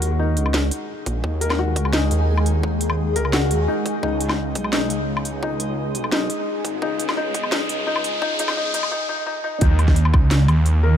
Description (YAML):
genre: half-time drum and bass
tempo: 172 BPM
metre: 4/4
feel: half-time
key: unclear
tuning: A4 = 440 Hz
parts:
  - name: felt-muted upright piano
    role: arpeggios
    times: 0.0-11.0 s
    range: Eb4 to Bb4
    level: -26 LUFS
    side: left 3 dB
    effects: low-pass filter, dub echo
  - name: phased detuned saw bass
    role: bass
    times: 0.0-11.0 s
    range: Ab1 to Eb2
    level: -21 LUFS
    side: right 1 dB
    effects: phaser
  - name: drum and bass drum kit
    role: drums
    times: 0.0-10.7 s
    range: hi-hat, snare drum, woodblock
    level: -26 LUFS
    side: left 1 dB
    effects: none
  - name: backwards swelling texture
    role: texture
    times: 0.0-8.9 s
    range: Ab3 to Ab4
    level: -28 LUFS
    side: left 1 dB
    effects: built-in reverb
  - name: electronic kick drum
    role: drums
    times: 1.1-10.2 s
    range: none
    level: -19 LUFS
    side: equal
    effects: high-pass filter on kick
  - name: riser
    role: sound effects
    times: 6.1-8.9 s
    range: none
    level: -29 LUFS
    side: equal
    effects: none
room: light reverb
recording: dark, warm production, high-pass filter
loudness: -18 LUFS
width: side -9 dB against mid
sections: 0.0-9.6 A section; 9.6-11.0 B section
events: build-up 0.0-9.6; filter sweep on felt piano 0.0-9.6; filter sweep 0.0-9.6; riser 6.1-8.9; break 8.9-9.6; drop 9.6-11.0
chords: 0.0 Ebm; 4.0 Db5; 9.6 N.C.